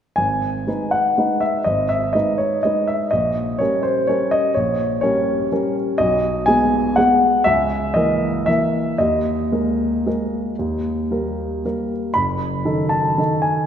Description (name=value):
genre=classical, piano waltz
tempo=109-132 BPM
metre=3/4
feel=rubato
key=G# minor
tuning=A4 = 440 Hz
part: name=warm baby grand piano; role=solo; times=0.2-13.7 s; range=F#1 to B5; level=-17 LUFS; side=equal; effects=none
room=wet concert hall reverb, RT60 2.2 s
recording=heard from further back in the room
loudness=-17 LUFS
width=side -8 dB against mid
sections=0.2-13.7 A section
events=none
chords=0.2 G#m; 3.1 Gdim/Bb; 6.0 G#m/B; 7.5 A#dim/C#; 9.0 D#sus4; 10.6 D#; 12.2 D#dim/F#